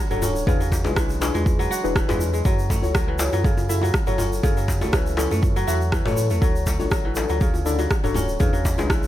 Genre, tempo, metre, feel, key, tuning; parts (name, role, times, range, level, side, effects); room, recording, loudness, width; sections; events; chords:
afro house; 121 BPM; 4/4; swing 53% on 16ths; F# minor; A4 = 444 Hz
kora; arpeggios; 0.0-9.1 s; C#3 to F#4; -27 LUFS; equal; sidechain pumping, dub echo
deep mellow chord stab; stabs; 0.1-9.1 s; D4 to E5; -27 LUFS; left 3 dB; chorus, sidechain pumping, dub echo
warm sub bass; bass; 0.1-9.1 s; D1 to A2; -26 LUFS; equal; sidechain pumping
afro-pop drum kit; drums; 0.1-9.0 s; rim click, toms; -28 LUFS; right 1 dB
egg shaker; percussion; 0.1-9.1 s; -35 LUFS; right 2 dB
djembe; percussion; 0.2-8.9 s; -30 LUFS; left 3 dB
electronic kick drum; drums; 0.5-9.0 s; -22 LUFS; equal
studio ambience; -19 LUFS; side -13 dB against mid
0.0-9.1 A section
0.5 E7; 2.5 F#m7; 6.4 Dmaj7; 8.4 E7